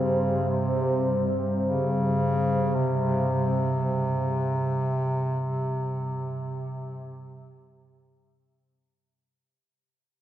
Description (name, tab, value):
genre	dark ambient drone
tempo	free time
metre	none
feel	none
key	unclear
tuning	A4 = 439 Hz
part	warm bass clarinet	melody	0.0-8.3 s	C3 to Db3	-26 LUFS	equal	tape echo
part	sweeping resonant pad	sustained chords	0.0-9.4 s	G2 to C5	-28 LUFS	equal	chorus
part	bronze singing bowl	texture	0.0-9.4 s	none	barely audible	none	none
room	wet huge ambient reverb, RT60 7.9 s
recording	worn, warbling old tape, cassette tape, warbly pitch drift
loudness	-24 LUFS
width	side -12 dB against mid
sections	0.0-9.4 A section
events	fade-out on analog synth pad 0.0-9.4; fade-out 3.5-9.4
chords	0.0 C5